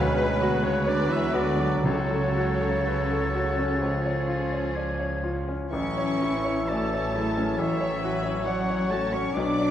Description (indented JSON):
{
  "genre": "classical, romantic movement for piano and orchestra",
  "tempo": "58-70 BPM",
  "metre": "4/4",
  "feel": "rubato",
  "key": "F# minor",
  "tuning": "A4 = 441 Hz",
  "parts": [
    { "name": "clear concert grand piano", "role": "melody", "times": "0.0-9.7 s", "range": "A1 to D5", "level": "-29 LUFS", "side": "left 2 dB", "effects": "none" },
    { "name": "rich studio violin section", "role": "melody", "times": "0.0-9.7 s", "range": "G#4 to D5", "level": "-40 LUFS", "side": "left 2 dB", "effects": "none" },
    { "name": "clear oboe", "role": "second line", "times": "0.0-9.7 s", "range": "B4 to D6", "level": "-35 LUFS", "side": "right 1 dB", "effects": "none" },
    { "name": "clear studio violin section", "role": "second line", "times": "0.0-9.7 s", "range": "B4 to D6", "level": "-36 LUFS", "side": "left 2 dB", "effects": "none" },
    { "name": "mellow clarinet", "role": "second line", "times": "0.0-9.7 s", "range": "E4 to C#5", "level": "-37 LUFS", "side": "left 2 dB", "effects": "none" },
    { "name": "mellow silver concert flute", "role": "second line", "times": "0.0-9.7 s", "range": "C#6 to A6", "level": "-36 LUFS", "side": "left 1 dB", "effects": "none" },
    { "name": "rich studio viola section", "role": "accompaniment", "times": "0.0-9.7 s", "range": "E3 to F#4", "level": "-33 LUFS", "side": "equal", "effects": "none" },
    { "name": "warm bassoon", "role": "accompaniment", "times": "0.0-9.7 s", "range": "E3 to F#3", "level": "-33 LUFS", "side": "right 2 dB", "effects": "none" },
    { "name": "mellow French horn section", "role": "sustained chords", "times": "0.0-9.7 s", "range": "B2 to D4", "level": "-33 LUFS", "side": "left 2 dB", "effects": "none" },
    { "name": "rich studio cello section", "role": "bass", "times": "0.0-9.7 s", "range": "B2 to D4", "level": "-33 LUFS", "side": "right 2 dB", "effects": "none" },
    { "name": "warm studio double bass section", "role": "bass", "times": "0.0-9.7 s", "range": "A1 to D2", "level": "-33 LUFS", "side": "right 3 dB", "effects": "none" },
    { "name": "timpani", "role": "percussion", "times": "1.8-3.3 s", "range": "C#3", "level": "-31 LUFS", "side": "right 1 dB", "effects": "none" }
  ],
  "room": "moderate concert hall reverb, RT60 1.8 s",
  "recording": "dark, warm production",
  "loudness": "-23 LUFS",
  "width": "side -10 dB against mid",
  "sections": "0.0-9.7 A section",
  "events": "none",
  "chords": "0.0 Bm/D; 1.8 F#m/C#; 3.8 C#; 5.7 A",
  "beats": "0.87 | 1.84 2.86 3.81 4.75 | 5.71 6.67 7.57 8.45 | 9.35"
}